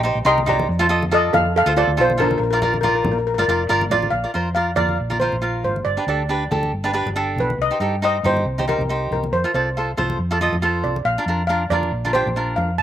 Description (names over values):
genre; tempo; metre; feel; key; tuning
calypso; 139 BPM; 4/4; straight; Bb major; A4 = 438 Hz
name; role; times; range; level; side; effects
steel pan; melody; 0.0-12.8 s; D4 to C6; -20 LUFS; left 1 dB; none
cavaquinho; accompaniment; 0.0-12.7 s; D4 to F5; -21 LUFS; right 2 dB; slapback echo
hollow-body short-scale fingered electric bass; bass; 0.0-12.8 s; F1 to G2; -24 LUFS; equal; none
congas; percussion; 0.4-12.7 s; none; -28 LUFS; left 1 dB; none
room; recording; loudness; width
little or no reverb; recorded outdoors, with no room sound; -17 LUFS; side -11 dB against mid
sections
0.0-4.1 A section; 4.1-12.8 B section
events
none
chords
0.0 Cm7; 0.7 F; 2.4 Bb; 4.1 Bbadd9; 5.9 G; 7.6 Cm7; 9.3 F; 11.1 Bb